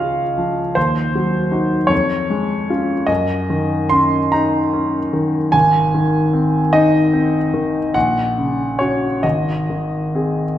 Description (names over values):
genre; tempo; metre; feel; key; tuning
classical, romantic character piece for solo piano; 50 BPM (dotted quarters); 6/8; uneven beats, rubato; unclear; A4 = 440 Hz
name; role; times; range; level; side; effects
clear grand piano; solo; 0.0-10.6 s; Ab1 to C6; -15 LUFS; equal; none
room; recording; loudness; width
wet recital hall reverb, RT60 1.6 s; none; -15 LUFS; side -11 dB against mid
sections
0.0-10.6 A section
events
none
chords
0.0 Db; 0.8 Cdim/Eb; 1.9 Db/F; 3.1 Ebm7/Gb; 5.5 Ab; 8.0 Gb/Bb; 9.2 Ab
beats
| 0.76 1.91 | 3.09 4.33 | 5.54 6.74 | 7.95 9.24